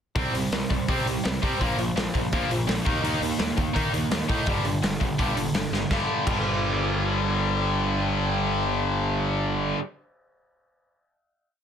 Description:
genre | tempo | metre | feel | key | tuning
punk rock | 167 BPM | 4/4 | straight | unclear | A4 = 439 Hz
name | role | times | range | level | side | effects
tight distorted guitar | riff | 0.2-9.8 s | G2 to Eb4 | -25 LUFS | equal | distortion
fuzz picked electric bass | bass | 0.2-9.7 s | G1 to Eb3 | -30 LUFS | equal | overdrive
raw garage drum kit | drums | 0.2-6.4 s | crash cymbal, hi-hat, kick drum, snare drum | -28 LUFS | equal | none
room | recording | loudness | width
little or no reverb | dense, heavily limited modern master | -23 LUFS | side -8 dB against mid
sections
0.2-5.9 verse; 5.9-8.8 final chord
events
drum fill 5.7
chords
0.2 C5; 1.6 Bb5; 2.9 Eb5; 4.5 G5

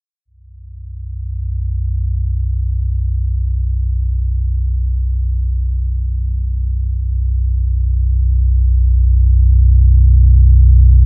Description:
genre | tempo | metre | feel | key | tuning
ambient | free time | none | none | unclear | A4 = 441 Hz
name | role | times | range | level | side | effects
deep rumbling drone | solo | 0.7-11.1 s | B1 to F#2 | -12 LUFS | equal | built-in reverb, phaser
room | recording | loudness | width
light reverb | worn, warbling old tape, cassette tape, warbly pitch drift | -12 LUFS | side -30 dB against mid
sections
0.3-11.1 A section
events
none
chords
0.3 B5

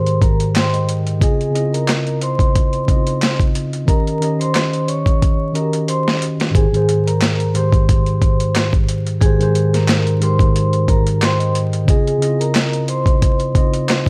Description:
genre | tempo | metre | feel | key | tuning
hip hop, boom-bap hip-hop | 90 BPM | 4/4 | swing 55% on 16ths | Ab major | A4 = 438 Hz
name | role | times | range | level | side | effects
vibraphone with soft mallets | melody | 0.0-14.0 s | Ab4 to Db6 | -24 LUFS | equal | none
mellow tine electric piano | accompaniment | 0.0-14.1 s | Ab2 to G5 | -20 LUFS | equal | cassette tape
dusty soul sampler-style drum kit | drums | 0.1-14.1 s | handclaps, hi-hat, kick drum, snare drum | -19 LUFS | equal | overdrive
room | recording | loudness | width
little or no reverb | dry, gritty hardware recording, vinyl crackle | -16 LUFS | mono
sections
0.0-6.5 A section; 6.5-14.1 A section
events
drum fill 5.2-6.5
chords
0.0 Abmaj7; 1.2 Dbmaj9; 3.9 Eb7; 6.5 Abmaj7; 11.9 Dbmaj9

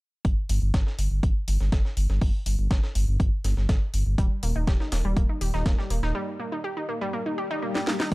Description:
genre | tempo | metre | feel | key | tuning
melodic techno | 122 BPM | 4/4 | straight | unclear | A4 = 439 Hz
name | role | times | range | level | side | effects
swelling detuned saw bass | bass | 0.2-8.1 s | Eb1 to G1 | -24 LUFS | equal | sidechain pumping
breakbeat sampler-style drum kit | drums | 0.2-8.1 s | hi-hat, snare drum | -39 LUFS | equal | high-pass filter on hats, high-pass filter on snare
electronic kick drum | drums | 0.2-8.1 s | none | -23 LUFS | equal | overdrive
house drum kit | drums | 0.5-8.1 s | hi-hat, shaker, snare drum | -32 LUFS | left 1 dB | overdrive, sidechain pumping on hats, sidechain pumping on perc
wide unison pluck | arpeggios | 4.2-8.1 s | G3 to G4 | -30 LUFS | right 1 dB | sidechain pumping, analog delay
swell | sound effects | 7.3-8.1 s | none | -32 LUFS | left 6 dB | none
room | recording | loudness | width
digital ambience | dry, gritty hardware recording | -23 LUFS | side -20 dB against mid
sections
0.2-8.1 A section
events
filter sweep on detuned saw bass 0.2-8.1; break 6.2-8.1; swell 7.3-8.1; drum fill 7.7-8.1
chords
0.2 N.C.; 4.2 Eb

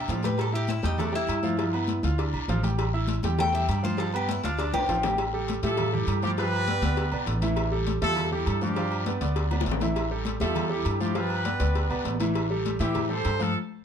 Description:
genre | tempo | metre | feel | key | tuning
latin, salsa | 201 BPM | 4/4 | straight | unclear | A4 = 440 Hz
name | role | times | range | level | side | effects
Cuban tres | melody | 0.0-5.2 s | D4 to G5 | -30 LUFS | left 2 dB | slapback echo, plate reverb
bright concert grand piano | accompaniment | 0.0-13.5 s | E3 to F6 | -30 LUFS | right 2 dB | none
upright bass | bass | 0.0-13.5 s | A1 to A2 | -28 LUFS | equal | none
congas | percussion | 0.1-13.6 s | none | -35 LUFS | left 4 dB | none
cowbell and bongos | percussion | 0.1-13.4 s | none | -35 LUFS | left 6 dB | none
guiro | percussion | 0.1-13.6 s | none | -43 LUFS | left 6 dB | none
timbales and agogo bells | percussion | 0.1-13.4 s | none | -36 LUFS | right 4 dB | none
bright horn section | melody | 5.6-13.6 s | D4 to C5 | -30 LUFS | equal | plate reverb
room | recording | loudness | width
moderate studio reverb, RT60 0.5 s | dark, warm production | -24 LUFS | side -8 dB against mid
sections
0.0-5.2 A section; 5.2-13.8 B section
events
Cuban tres solo 0.0-5.2; drum fill 4.7-5.2, 9.5-10.0; band accent 13.6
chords
0.4 A5; 1.6 G7; 2.8 A5; 4.0 G7; 5.2 A5; 6.4 G7; 7.6 A5; 8.8 G7; 10.0 A5; 11.2 G7; 12.4 Am7

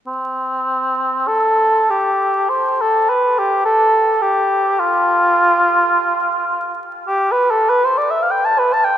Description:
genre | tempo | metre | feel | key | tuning
classical, free, expressive piece for unaccompanied cor anglais | 47-54 BPM | 4/4 | rubato | unclear | A4 = 440 Hz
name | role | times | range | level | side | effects
dark cor anglais | solo | 0.1-9.0 s | C4 to A5 | -14 LUFS | equal | none
room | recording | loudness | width
wet cathedral reverb, RT60 5.9 s | minimal, uncompressed stereo recording, vinyl crackle | -14 LUFS | side -10 dB against mid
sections
0.1-9.0 A section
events
none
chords
none

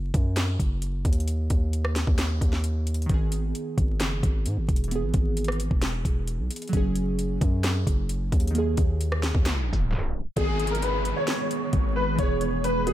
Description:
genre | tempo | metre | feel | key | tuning
hip hop, trap | 132 BPM | 4/4 | half-time | G# minor | A4 = 441 Hz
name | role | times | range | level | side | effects
distorted 808-style bass | bass | 0.0-12.9 s | E1 to G#2 | -27 LUFS | equal | distortion
trap drum kit | drums | 0.1-12.9 s | hi-hat, kick drum, rim click, snare drum | -26 LUFS | equal | none
glassy digital keys | accompaniment | 3.1-12.9 s | D#3 to G#4 | -31 LUFS | right 1 dB | chorus
riser and downlifter | sound effects | 9.6-12.9 s | none | -38 LUFS | right 1 dB | none
clear concert grand piano | melody | 10.4-12.9 s | G#4 to C#5 | -27 LUFS | left 1 dB | ensemble chorus, ping-pong delay
ethereal airy pad | sustained chords | 10.9-12.9 s | D#3 to G#4 | -32 LUFS | right 2 dB | ensemble chorus, built-in reverb
room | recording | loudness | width
little or no reverb | vinyl crackle, tape stop | -23 LUFS | side -13 dB against mid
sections
0.0-10.4 A section; 10.4-12.9 B section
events
break 0.0-3.1; tape stop 9.5-10.4; drum fill 9.9-10.4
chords
0.0 D#m/F#; 1.3 N.C.; 3.1 G#m; 4.9 E; 6.7 F#sus2; 8.6 D#sus4; 10.4 G#m; 12.2 E

